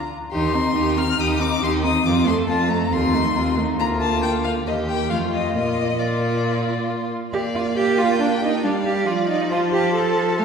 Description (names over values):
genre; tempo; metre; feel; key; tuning
quick classical-period movement for string quartet; 137 BPM; 4/4; straight; Bb major; A4 = 440 Hz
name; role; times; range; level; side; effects
rich violin; melody; 0.0-10.4 s; D5 to F6; -26 LUFS; left 6 dB; none
clear violin; second line; 0.3-10.4 s; Eb4 to G5; -27 LUFS; left 3 dB; none
rich viola; accompaniment; 0.3-10.4 s; F3 to Eb4; -23 LUFS; right 2 dB; none
rich cello; bass; 0.3-10.4 s; D2 to A4; -23 LUFS; right 2 dB; none
room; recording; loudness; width
wet scoring stage reverb, RT60 2.0 s; heard from further back in the room; -18 LUFS; side -6 dB against mid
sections
0.0-7.3 A section; 7.3-10.4 B section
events
none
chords
0.3 Cm/Eb; 2.1 F; 2.9 F7/Eb; 3.8 Bb/D; 4.7 Eb; 5.1 F7; 5.5 Bb; 9.1 F7